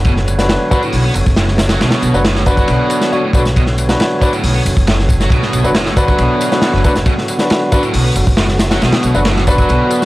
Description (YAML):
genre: breakbeat, breaks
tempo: 137 BPM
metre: 4/4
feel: straight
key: B minor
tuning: A4 = 439 Hz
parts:
  - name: tonewheel organ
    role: sustained chords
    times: 0.0-10.1 s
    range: D3 to C#5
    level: -21 LUFS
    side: right 1 dB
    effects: overdrive, fast rotary speaker, sidechain pumping
  - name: upright bass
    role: bass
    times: 0.0-9.8 s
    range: F#1 to D2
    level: -16 LUFS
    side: equal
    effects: none
  - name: crunchy breakbeat drum kit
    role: drums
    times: 0.0-10.1 s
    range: hi-hat, kick drum, ride cymbal, snare drum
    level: -15 LUFS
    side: equal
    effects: none
  - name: biting overdriven guitar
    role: riff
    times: 0.1-10.1 s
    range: A2 to B3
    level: -20 LUFS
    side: right 1 dB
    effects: analog delay
  - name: tambourine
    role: drums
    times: 0.1-10.1 s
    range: none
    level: -30 LUFS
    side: left 3 dB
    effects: none
  - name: warm grand piano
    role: stabs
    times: 0.4-10.1 s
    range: D4 to C#5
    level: -18 LUFS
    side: left 1 dB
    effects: analog delay
room: small room ambience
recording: dry, gritty hardware recording, vinyl crackle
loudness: -11 LUFS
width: side -18 dB against mid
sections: 0.0-10.1 A section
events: none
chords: 0.0 Bm